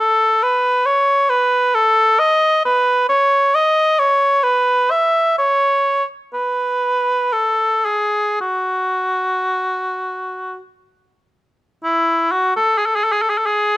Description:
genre	classical, free, expressive piece for unaccompanied cor anglais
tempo	43-71 BPM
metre	3/4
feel	rubato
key	unclear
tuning	A4 = 443 Hz
part	warm cor anglais	solo	0.0-13.8 s	E4 to E5	-14 LUFS	equal	none
room	light reverb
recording	close, detailed microphones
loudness	-14 LUFS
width	side -16 dB against mid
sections	0.0-11.8 A section; 11.8-13.8 B section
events	none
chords	none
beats	0.84 1.72 | 2.63 3.53 4.45 | 5.39 6.34 7.33 | 8.42 9.53 10.62 | 11.84 12.81

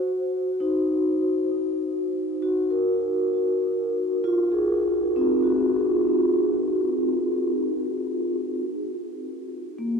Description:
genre	ambient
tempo	66 BPM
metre	3/4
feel	straight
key	Ab mixolydian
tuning	A4 = 439 Hz
part	vibraphone with soft mallets	solo	0.0-10.0 s	Bb3 to Bb4	-22 LUFS	equal	tape echo
room	wet huge ambient reverb, RT60 7.5 s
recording	dark, warm production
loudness	-22 LUFS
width	side -5 dB against mid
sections	0.0-8.9 A section; 8.9-10.0 B section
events	none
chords	0.0 Abadd9; 8.9 N.C.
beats	| 0.61 1.51 2.42 | 3.33 4.24 5.17 | 6.09 7.01 7.93 | 8.87 9.80

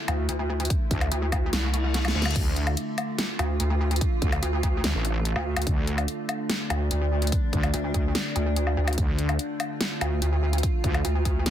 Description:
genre	heavy wobble dubstep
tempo	145 BPM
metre	4/4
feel	half-time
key	D minor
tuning	A4 = 440 Hz
part	evolving wavetable pad	sustained chords	0.0-11.5 s	D3 to F4	-32 LUFS	equal	chorus, built-in reverb, sidechain pumping
part	pulsing pluck wobble bass	bass	0.1-11.4 s	C2 to D2	-25 LUFS	equal	chorus, overdrive
part	dubstep drum kit	drums	0.1-11.5 s	crash cymbal, hi-hat, snare drum, woodblock	-30 LUFS	left 2 dB	none
part	electronic kick drum	drums	0.7-11.3 s	none	-26 LUFS	equal	none
part	wobble bass	bass	0.9-11.5 s	A1 to D2	-26 LUFS	equal	chorus, overdrive
part	reverse cymbal	sound effects	1.7-2.4 s	none	-34 LUFS	left 6 dB	none
room	little or no reverb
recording	dense, heavily limited modern master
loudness	-23 LUFS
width	side -11 dB against mid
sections	0.0-11.5 A section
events	reverse cymbal 1.7-2.4; drum fill 1.9-2.4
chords	0.0 Dm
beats	0.29 | 0.70 1.12 1.53 1.94 | 2.36 2.77 3.19 3.60 | 4.01 4.43 4.84 5.25 | 5.67 6.08 6.50 6.91 | 7.32 7.74 8.15 8.56 | 8.98 9.39 9.80 10.22 | 10.63 11.05 11.46

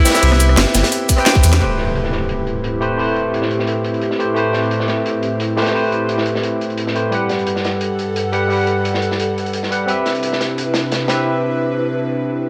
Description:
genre	liquid drum and bass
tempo	174 BPM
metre	4/4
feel	swing 53% on 16ths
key	A dorian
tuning	A4 = 440 Hz
part	clear tenor saxophone	melody	0.0-1.2 s	E4	-24 LUFS	equal	digital delay
part	barky tine electric piano	accompaniment	0.0-12.5 s	G3 to G5	-21 LUFS	equal	analog chorus, digital delay
part	crunchy breakbeat drum kit	drums	0.1-11.2 s	hi-hat, snare drum	-26 LUFS	equal	high-pass filter on hats, low-pass filter on hats, small room reverb, high-pass filter on snare, low-pass filter on snare, high-pass filter on room, low-pass filter on room
part	garage drum kit	drums	0.1-1.6 s	hi-hat, ride cymbal, rim click, shaker, snare drum	-20 LUFS	equal	small room reverb
part	sub bass with octave	bass	0.2-1.6 s	G1 to E2	-15 LUFS	equal	none
part	congas and bongos	percussion	0.3-0.9 s	none	-26 LUFS	equal	none
part	electronic kick drum	drums	1.1-1.4 s	none	-16 LUFS	equal	small room reverb
part	airy breathy pad	sustained chords	2.0-12.5 s	G2 to F#5	-25 LUFS	equal	chorus, sidechain pumping
part	impact	sound effects	1.6-3.0 s	none	-26 LUFS	equal	none
room	moderate concert hall reverb, RT60 2.1 s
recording	none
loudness	-18 LUFS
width	mono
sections	0.0-1.6 A section; 1.6-12.5 B section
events	drop 0.0-1.6; drum fill 1.3-1.6; impact 1.6-3.0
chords	0.0 Cmaj7; 1.6 Am9; 7.1 Gmaj7; 9.9 Cmaj7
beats	| 0.23 0.57 0.92 1.26 | 1.61 1.95 2.30 2.64 | 2.99 3.33 3.68 4.02 | 4.37 4.71 5.06 5.40 | 5.75 6.09 6.44 6.78 | 7.12 7.47 7.82 8.16 | 8.50 8.85 9.19 9.54 | 9.88 10.23 10.57 10.92 | 11.26 11.61 11.95 12.30

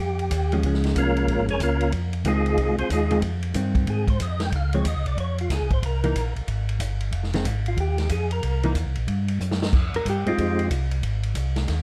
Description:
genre	soul jazz organ trio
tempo	185 BPM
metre	4/4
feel	swing 64% on 8ths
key	F minor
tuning	A4 = 441 Hz
part	percussive tonewheel organ	melody	0.0-10.7 s	Ab3 to G5	-29 LUFS	equal	slow rotary speaker, chorus vibrato
part	mellow tonewheel organ	bass	0.0-11.8 s	F1 to Ab2	-27 LUFS	equal	chorus vibrato, slow rotary speaker
part	vintage drum kit	drums	0.2-11.8 s	crash cymbal, hi-hat, kick drum, ride cymbal, snare drum	-31 LUFS	equal	none
part	hollow-body jazz guitar	accompaniment	0.5-10.7 s	Eb3 to Bb4	-29 LUFS	equal	none
room	light reverb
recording	dark, warm production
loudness	-24 LUFS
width	mono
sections	0.0-9.7 A section; 9.7-11.8 A section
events	tonewheel organ solo 0.0-9.7; drum fill 9.4-9.7; hollow-body jazz guitar solo 9.7-11.8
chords	0.0 Fm7; 4.5 Dbmaj7; 5.8 C7(no3); 7.1 Fm7; 8.4 Cm7; 9.7 Fm7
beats	0.31 | 0.64 0.96 1.28 1.61 | 1.93 2.26 2.58 2.90 | 3.23 3.55 3.88 4.20 | 4.52 4.85 5.17 5.50 | 5.82 6.15 6.47 6.80 | 7.12 7.45 7.77 8.10 | 8.43 8.75 9.08 9.40 | 9.73 10.05 10.38 10.71 | 11.03 11.36 11.68

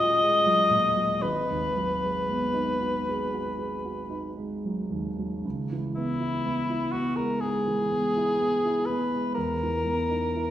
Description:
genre	classical, impressionist duo for cor anglais and grand piano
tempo	55-63 BPM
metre	4/4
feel	rubato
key	C# dorian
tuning	A4 = 440 Hz
part	mellow cor anglais	melody	0.0-10.5 s	E4 to D#5	-25 LUFS	left 1 dB	none
part	dark baby grand piano	accompaniment	0.0-10.5 s	D#1 to G#4	-29 LUFS	right 2 dB	none
room	wet recital hall reverb, RT60 1.5 s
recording	heard from further back in the room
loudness	-24 LUFS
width	side -12 dB against mid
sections	0.0-5.4 A section; 5.4-10.5 B section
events	none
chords	0.0 D#m11; 1.2 G#m7; 5.4 C#m7; 9.4 Emaj7(no3)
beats	0.20 | 1.23 2.29 3.33 4.38 | 5.45 6.44 7.42 8.38 | 9.36 10.32

